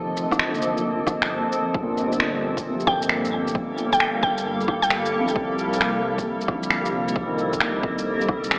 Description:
future garage; 133 BPM; 4/4; swing 67% on 16ths; G minor; A4 = 441 Hz
felt-muted upright piano; accompaniment; 0.0-8.6 s; Bb2 to G3; -30 LUFS; equal; sidechain pumping, diffuse ambient delay
granular cloud pad; sustained chords; 0.0-8.6 s; F3 to F5; -26 LUFS; equal; built-in reverb, wide subtle chorus, sidechain pumping
dark detuned saw bass; bass; 0.0-8.6 s; F1 to C2; -32 LUFS; equal; sidechain pumping
drifting glass-harmonics texture; texture; 0.0-8.6 s; A4; -31 LUFS; equal; chorus, built-in reverb
electronic shaker, rim click and finger snaps; drums; 0.2-8.6 s; -25 LUFS; equal; overdrive
electronic kick drum; drums; 0.3-8.4 s; -30 LUFS; equal; overdrive
mallet-like synth pluck; melody; 2.9-5.3 s; G5; -24 LUFS; equal; chorus, diffuse ambient delay
wet plate reverb, RT60 1.4 s; dreamy mix soaked in reverb, AM radio sound; -20 LUFS; side -32 dB against mid
0.0-1.7 A section; 1.7-8.6 B section
filter sweep on felt piano 0.0-1.7
0.0 F7sus4; 1.7 Gm9; 5.4 Cm7

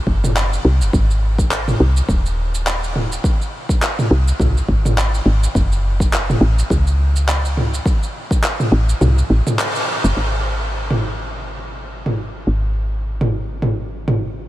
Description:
organic downtempo; 104 BPM; 4/4; swing 57% on 16ths; A4 = 441 Hz
woody FM bass; bass; 0.1-14.5 s; D#1 to C#2; -17 LUFS; equal; sidechain pumping
electronic kick drum; drums; 0.1-8.4 s; -18 LUFS; equal
deep house drum kit; drums; 0.2-14.2 s; handclaps, shaker, toms; -21 LUFS; equal
light reverb; -15 LUFS; side -15 dB against mid
0.0-10.2 A section; 10.2-14.5 B section
kick drops out 9.0-10.2; band accent 9.6

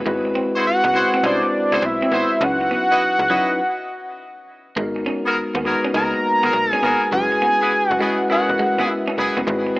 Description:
R&B; 102 BPM; 4/4; swing 66% on 16ths; G# minor; A4 = 440 Hz
mellow tine electric piano; accompaniment; 0.0-9.8 s; F#3 to B#4; -23 LUFS; left 1 dB
clean electric guitar; riff; 0.0-9.8 s; F#3 to D#4; -27 LUFS; right 2 dB; analog chorus
slap-like FM bass; bass; 0.0-9.8 s; E1 to D#2; -28 LUFS; equal
clear horn section; stabs; 0.5-9.4 s; B3 to D#5; -24 LUFS; equal; tape echo
fat analog lead; melody; 0.7-9.1 s; D5 to A#5; -18 LUFS; equal
light reverb, digital ambience; small speaker sound; -16 LUFS; side -21 dB against mid
0.0-4.8 A section; 4.8-9.8 A section
stop 3.6-4.8
0.1 G#7alt; 2.4 C#m11; 3.6 N.C.; 4.8 G#m9; 7.1 F#9sus4

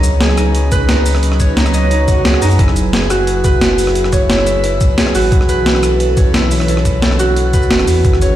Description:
liquid drum and bass; 176 BPM; 4/4; straight; A4 = 442 Hz
airy breathy pad; sustained chords; 0.0-8.4 s; E3 to B4; -21 LUFS; right 1 dB; chorus, phaser
Celtic harp; arpeggios; 0.0-8.4 s; D#4 to E5; -16 LUFS; equal; ping-pong delay
warm sub bass; bass; 0.0-8.4 s; F#1 to F#2; -15 LUFS; equal
breakbeat sampler-style drum kit; drums; 0.0-8.3 s; hi-hat, rim click, shaker, snare drum; -18 LUFS; equal
electronic kick drum; drums; 0.7-8.1 s; -14 LUFS; equal
swell; sound effects; 2.0-2.6 s; -22 LUFS; right 4 dB
light reverb, digital ambience; played on a big sound system in a bare room, stone room reverb; -10 LUFS; side -12 dB against mid
0.0-8.4 A section
swell 2.0-2.6; kick drops out 2.3-2.6
0.0 C#9sus4; 2.6 F#9sus4; 5.3 B9sus4

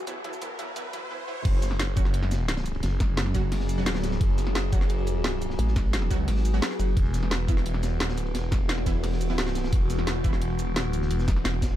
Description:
dark technical drum and bass; 174 BPM; 4/4; straight; A4 = 440 Hz
metallic inharmonic drone; sustained chords; 0.0-11.8 s; E3 to G#4; -34 LUFS; left 1 dB; chorus, built-in reverb, sidechain pumping
phased detuned saw bass; bass; 0.0-11.8 s; E1 to D2; -28 LUFS; equal; phaser, overdrive, sidechain pumping, high-pass filter
riser; sound effects; 0.0-1.4 s; -38 LUFS; right 1 dB
wide unison pluck; arpeggios; 0.1-1.0 s; F#3; -43 LUFS; left 2 dB; sidechain pumping, digital delay
orchestra-hit-like synth stab; stabs; 0.1-10.3 s; E3 to F#4; -36 LUFS; right 3 dB; built-in reverb, digital delay
drum and bass drum kit; drums; 0.1-11.7 s; crash cymbal, hi-hat, shaker, snare drum; -31 LUFS; equal; overdrive
crunchy breakbeat drum kit; drums; 1.4-11.7 s; hi-hat, ride cymbal, snare drum; -38 LUFS; equal; high-pass filter on cymbals, high-pass filter on hats, high-pass filter on snare, high-pass filter on room
electronic kick drum; drums; 1.4-11.7 s; -24 LUFS; equal; overdrive
vowel-sweep wobble bass; bass; 5.6-7.0, 11.3-11.4 s; E1 to A1; -24 LUFS; equal; chorus
little or no reverb; dark, warm production, high-pass filter; -24 LUFS; side -13 dB against mid
0.0-1.4 A section; 1.4-11.8 B section
build-up 0.0-1.4; riser 0.0-1.4; drop 1.4-11.8
0.0 E5; 1.4 F#5; 7.0 E5

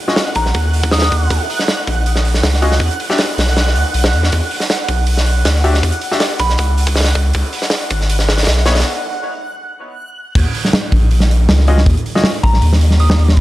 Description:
drum and bass, jungle; 159 BPM; 4/4; straight; Eb phrygian; A4 = 440 Hz
backwards swelling texture; texture; 0.0-8.8 s; Gb5 to Gb6; -24 LUFS; right 2 dB; built-in reverb
bright grand piano; stabs; 0.1-0.2, 2.6-3.2, 5.6-6.2, 8.7-8.8, 11.7-12.2 s; Cb4 to E5; -22 LUFS; left 2 dB; vintage 12-bit sampler grit, low-pass filter, dub echo
big rock drum kit; drums; 0.1-13.4 s; crash cymbal, hi-hat, kick drum, snare drum; -16 LUFS; equal; high-pass filter on kick, high-pass filter on hats, high-pass filter on cymbals, high-pass filter on snare, high-pass filter on room
soft synth bell; melody; 0.4-1.3, 6.4-6.6, 12.4-13.4 s; Bb5 to Eb6; -24 LUFS; right 1 dB; chorus, phaser, low-pass filter, dub echo
saturated sub bass; bass; 0.4-13.4 s; Ab1 to E2; -13 LUFS; equal
small room ambience; dry, gritty hardware recording, cassette tape; -12 LUFS; side -16 dB against mid
0.0-10.4 A section; 10.4-13.4 B section
build-up 0.0-10.4; filter sweep on grand piano 0.0-10.4; break 8.8-10.4; drop 10.4-13.4
0.0 Ebm7; 2.8 E7sus2; 6.6 Db7(no3); 10.4 Eb7(no3)

